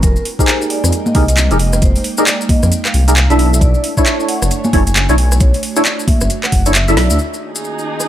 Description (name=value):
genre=UK garage, two-step garage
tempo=134 BPM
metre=4/4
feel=swing 61% on 16ths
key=unclear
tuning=A4 = 439 Hz
part: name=vibraphone with medium hard mallets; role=melody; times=0.0-7.1 s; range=Bb4 to Ab5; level=-24 LUFS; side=equal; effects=analog delay
part: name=airy breathy pad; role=sustained chords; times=0.1-8.1 s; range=Eb3 to G5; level=-26 LUFS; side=right 3 dB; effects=chorus, sidechain pumping
part: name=dark detuned saw bass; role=bass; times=0.0-7.2 s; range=F1 to F2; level=-14 LUFS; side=equal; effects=none
part: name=electronic kick drum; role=drums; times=0.0-6.6 s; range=none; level=-13 LUFS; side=equal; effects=overdrive
part: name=garage drum kit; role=drums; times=0.0-8.1 s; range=congas, handclaps, hi-hat, rim click, snare drum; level=-17 LUFS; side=equal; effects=overdrive, low-pass filter on hats, low-pass filter on snare, low-pass filter on perc
part: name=maracas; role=percussion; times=0.0-8.1 s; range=none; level=-23 LUFS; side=left 3 dB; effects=none
part: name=percussive organ stab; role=stabs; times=0.4-7.2 s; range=D4 to Fb5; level=-17 LUFS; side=equal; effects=ensemble chorus, analog delay
part: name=dark chamber string section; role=texture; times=7.2-8.1 s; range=Eb4 to Db5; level=-23 LUFS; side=right 2 dB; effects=sidechain pumping
room=light reverb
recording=dry, gritty hardware recording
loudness=-11 LUFS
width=side -12 dB against mid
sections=0.0-7.2 A section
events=filter sweep on synth stab 0.0-7.2; drum fill 7.0; band accent 7.0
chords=0.0 Fm11; 3.4 Bm11; 7.2 Ebm11